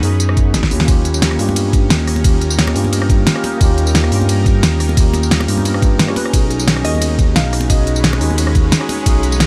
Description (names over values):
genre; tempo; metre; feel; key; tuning
liquid drum and bass; 176 BPM; 4/4; straight; unclear; A4 = 440 Hz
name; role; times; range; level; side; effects
mellow tine electric piano; accompaniment; 0.0-9.5 s; A#3 to G#4; -23 LUFS; equal; digital delay
shimmering ambient pad; sustained chords; 0.0-9.5 s; F#3 to B4; -29 LUFS; equal; chorus, built-in reverb, phaser
smooth synth bass; bass; 0.0-9.5 s; G#1 to G2; -19 LUFS; equal; tube saturation
pop drum kit; drums; 0.0-9.5 s; hi-hat, ride cymbal, rim click, snare drum, tambourine; -20 LUFS; equal; small room ambience
electronic kick drum; drums; 0.4-9.1 s; none; -16 LUFS; equal; small room ambience
congas; percussion; 1.5-9.0 s; none; -29 LUFS; equal; none
soft round pluck; melody; 6.1-9.5 s; B4 to E#5; -29 LUFS; equal; analog chorus, dub echo
room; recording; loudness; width
little or no reverb; none; -14 LUFS; mono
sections
0.0-9.5 A section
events
drum fill 0.5-0.9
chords
0.0 C#9sus4; 0.7 D#7; 6.3 B69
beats
0.20 0.54 | 0.88 1.22 1.56 1.90 | 2.24 2.58 2.92 3.27 | 3.61 3.95 4.29 4.63 | 4.97 5.31 5.65 5.99 | 6.33 6.67 7.02 7.36 | 7.70 8.04 8.38 8.72 | 9.06 9.40